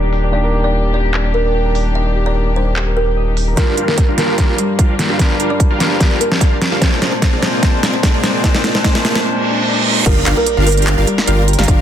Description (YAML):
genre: future bass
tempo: 148 BPM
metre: 4/4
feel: half-time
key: unclear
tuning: A4 = 441 Hz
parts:
  - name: kalimba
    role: melody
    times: 0.0-11.8 s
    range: G3 to Eb5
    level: -22 LUFS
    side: right 1 dB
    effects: sidechain pumping, low-pass filter, dub echo
  - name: barky tine electric piano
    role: accompaniment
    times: 0.0-10.1 s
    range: Bb2 to C5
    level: -22 LUFS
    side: left 2 dB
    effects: sidechain pumping, ping-pong delay
  - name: warm studio string section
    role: sustained chords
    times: 0.0-11.8 s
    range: G2 to Bb4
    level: -26 LUFS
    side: equal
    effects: sidechain pumping
  - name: Celtic harp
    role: arpeggios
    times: 0.0-6.1, 10.1-11.8 s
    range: D4 to G5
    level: -25 LUFS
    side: left 4 dB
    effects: sidechain pumping, ping-pong delay
  - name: saturated sub bass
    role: bass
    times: 0.0-3.6, 10.1-11.8 s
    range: Eb1 to G1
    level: -16 LUFS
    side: equal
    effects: sidechain pumping
  - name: dubstep drum kit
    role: drums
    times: 0.1-11.8 s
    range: crash cymbal, handclaps, hi-hat, snare drum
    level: -18 LUFS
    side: right 1 dB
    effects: low-pass filter on snare, low-pass filter on hats, low-pass filter on cymbals
  - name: dense compressed supersaw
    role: riff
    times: 3.6-11.8 s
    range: C4 to F5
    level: -21 LUFS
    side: right 1 dB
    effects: sidechain pumping, low-pass filter
  - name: electronic kick drum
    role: drums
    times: 3.6-11.8 s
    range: none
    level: -14 LUFS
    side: equal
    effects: none
  - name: riser, reverse cymbal and sub drop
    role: sound effects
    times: 6.5-11.7 s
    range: none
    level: -22 LUFS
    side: right 2 dB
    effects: none
  - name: wide unison pluck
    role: arpeggios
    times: 10.1-11.8 s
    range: F5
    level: -27 LUFS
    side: right 2 dB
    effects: cassette tape, sidechain pumping
room: light reverb, digital ambience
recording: dense, heavily limited modern master, low-pass filter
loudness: -12 LUFS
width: side -10 dB against mid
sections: 0.0-3.6 A section; 3.6-10.1 B section; 10.1-11.8 C section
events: filter sweep 0.0-3.6; build-up 3.6-10.1; drum fill 3.6-9.2; filter sweep on kalimba 3.6-10.1; riser 6.5-10.1; reverse cymbal 9.2-10.1; drop 10.1-11.8; impact 10.1-11.7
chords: 0.0 Ebmaj7; 3.6 Gm7; 6.8 Bb9; 10.1 Gm7